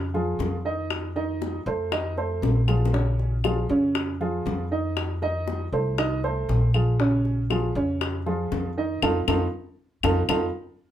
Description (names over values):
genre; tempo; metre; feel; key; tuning
latin, Cuban son and guajira; 118 BPM; 4/4; straight; Bb minor; A4 = 444 Hz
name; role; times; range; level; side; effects
dark baby grand piano; arpeggios; 0.0-10.5 s; Db3 to Eb5; -26 LUFS; right 2 dB; none
upright bass; bass; 0.0-10.5 s; Bb1 to F2; -26 LUFS; equal; none
bongos; percussion; 0.1-10.4 s; none; -32 LUFS; left 6 dB; none
claves; percussion; 0.9-10.4 s; none; -30 LUFS; left 7 dB; none
room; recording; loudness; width
moderate studio reverb, RT60 0.5 s; band playing live in one room; -22 LUFS; side -11 dB against mid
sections
0.0-10.9 A section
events
drum fill 2.7; band accent 9.0-10.9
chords
0.0 Bb7(no3) (rootless); 0.9 F7; 2.9 Bbm7; 5.0 F7; 7.0 Bbm7; 9.0 F7